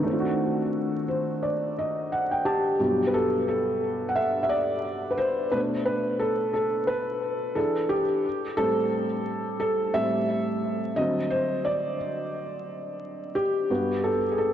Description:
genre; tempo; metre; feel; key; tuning
hip hop; 88 BPM; 4/4; swing 56% on 16ths; unclear; A4 = 440 Hz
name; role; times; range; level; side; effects
felt-muted upright piano; solo; 0.0-14.5 s; G2 to A5; -24 LUFS; equal; low-pass filter, diffuse ambient delay
room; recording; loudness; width
wet huge ambient reverb, RT60 4.3 s; dreamy mix soaked in reverb, vinyl crackle, nothing above 7.9 kHz; -24 LUFS; side -10 dB against mid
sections
0.0-2.8 A section; 2.8-14.5 B section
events
felt piano fill 0.7-2.8; felt piano solo 2.8-14.5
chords
0.1 D7b9; 2.8 Gmaj7; 5.5 Bm7; 7.6 E7; 8.2 Am7; 11.0 D7; 13.7 Gmaj9

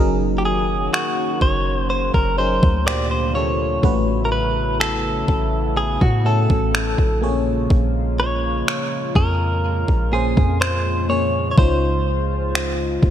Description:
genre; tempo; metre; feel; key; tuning
contemporary R&B; 62 BPM; 4/4; straight; unclear; A4 = 439 Hz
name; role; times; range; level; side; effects
FM electric piano; accompaniment; 0.0-13.1 s; A2 to Db5; -24 LUFS; left 1 dB; chorus, phaser
chorused pulse-width pad; sustained chords; 0.0-13.1 s; C3 to C5; -27 LUFS; left 1 dB; wide subtle chorus, sidechain pumping
warm 808-style bass; bass; 0.0-13.1 s; Gb1 to A2; -22 LUFS; equal; none
direct-recorded clean electric guitar; melody; 0.4-13.1 s; Gb4 to D5; -23 LUFS; equal; digital delay
crisp 8-bit digital drum machine; drums; 0.9-13.1 s; finger snaps, kick drum; -19 LUFS; equal; overdrive, gated reverb
room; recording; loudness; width
light reverb; bright 1980s-style digital production; -17 LUFS; side -10 dB against mid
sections
0.0-13.1 A section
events
none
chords
0.0 Gb6; 2.9 Bb69; 3.8 A69; 7.2 Bbm7; 11.6 Dbmaj7

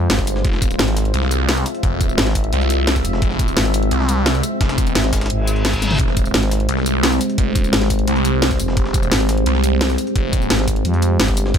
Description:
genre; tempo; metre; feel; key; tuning
dark technical drum and bass; 173 BPM; 4/4; straight; F harmonic minor; A4 = 440 Hz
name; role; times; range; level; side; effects
deep dark ambient pad; sustained chords; 0.0-11.6 s; Ab3 to E5; -22 LUFS; equal; chorus, built-in reverb, sidechain pumping
growling FM bass; bass; 0.0-11.5 s; F1 to F2; -19 LUFS; equal; none
breakbeat sampler-style drum kit; drums; 0.1-11.6 s; hi-hat, snare drum; -31 LUFS; equal; none
drum and bass drum kit; drums; 0.1-11.6 s; hi-hat, snare drum, tambourine, toms; -20 LUFS; equal; small room ambience
electronic kick drum; drums; 0.2-11.6 s; none; -20 LUFS; equal; small room ambience
phased detuned saw bass; bass; 0.4-11.6 s; F1 to C2; -19 LUFS; equal; phaser, tube saturation, sidechain pumping
reverse cymbal; sound effects; 5.4-6.0 s; none; -26 LUFS; left 1 dB; none
room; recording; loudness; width
little or no reverb; none; -15 LUFS; side -8 dB against mid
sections
0.0-11.6 A section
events
reverse cymbal 5.4-6.0; drum fill 5.8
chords
0.0 Fm

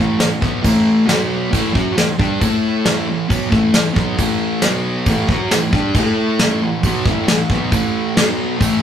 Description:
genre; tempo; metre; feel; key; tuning
garage rock duo or trio; 136 BPM; 4/4; straight; unclear; A4 = 440 Hz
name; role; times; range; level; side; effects
thick fuzz guitar; riff; 0.0-8.8 s; A2 to A4; -16 LUFS; equal; distortion
soft brush drum kit; drums; 0.2-8.7 s; crash cymbal, kick drum, snare drum; -18 LUFS; equal; none
room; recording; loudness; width
wet studio reverb, RT60 0.5 s; rough rehearsal-room recording; -14 LUFS; side -9 dB against mid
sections
0.0-8.8 A section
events
none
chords
0.0 A5; 1.1 B5; 1.5 A5; 4.6 B5; 5.1 A5; 8.2 B5

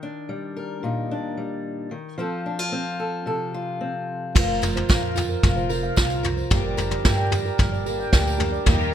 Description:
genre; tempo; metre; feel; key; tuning
indie folk with a building arrangement; 111 BPM; 4/4; straight; unclear; A4 = 441 Hz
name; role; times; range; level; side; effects
fingerpicked steel-string acoustic guitar; accompaniment; 0.0-6.5 s; Bb2 to Bb4; -28 LUFS; left 2 dB; none
picked twelve-string acoustic guitar; accompaniment; 4.3-8.9 s; G2 to Bb4; -28 LUFS; left 6 dB; none
handpan; arpeggios; 4.3-8.9 s; F4 to G5; -28 LUFS; right 9 dB; analog delay
upright bass; bass; 4.4-8.9 s; F1 to G2; -27 LUFS; right 1 dB; none
vintage brush drum kit; drums; 4.4-8.8 s; crash cymbal, kick drum, snare drum, toms; -21 LUFS; equal; none
tambourine; percussion; 4.4-8.9 s; none; -39 LUFS; right 5 dB; none
warm studio string section; sustained chords; 8.7-8.9 s; Eb3 to G4; -27 LUFS; equal; none
room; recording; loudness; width
little or no reverb; none; -21 LUFS; side -10 dB against mid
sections
0.0-4.4 A section; 4.4-8.9 B section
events
none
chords
0.0 Ebmaj7; 2.2 F; 4.4 Fsus4; 6.5 Gm

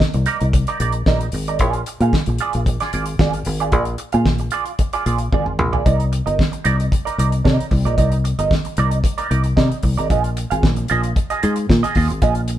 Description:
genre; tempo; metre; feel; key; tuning
disco; 113 BPM; 4/4; straight; C minor; A4 = 440 Hz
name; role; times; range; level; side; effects
damped 70s drum kit; drums; 0.0-12.6 s; hi-hat, kick drum, snare drum, toms; -19 LUFS; equal; none
semi-hollow electric guitar; accompaniment; 0.1-12.5 s; Eb4 to F5; -22 LUFS; right 5 dB; wah
fingered electric bass; bass; 0.1-12.6 s; G1 to C3; -19 LUFS; left 1 dB; none
room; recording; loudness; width
moderate studio reverb, RT60 0.9 s; band playing live in one room; -16 LUFS; side -12 dB against mid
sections
0.0-5.9 A section; 5.9-12.6 B section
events
drum fill 5.3-5.9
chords
0.0 Cm9; 1.6 Bb7; 5.9 Cm9; 10.1 Bb7sus4

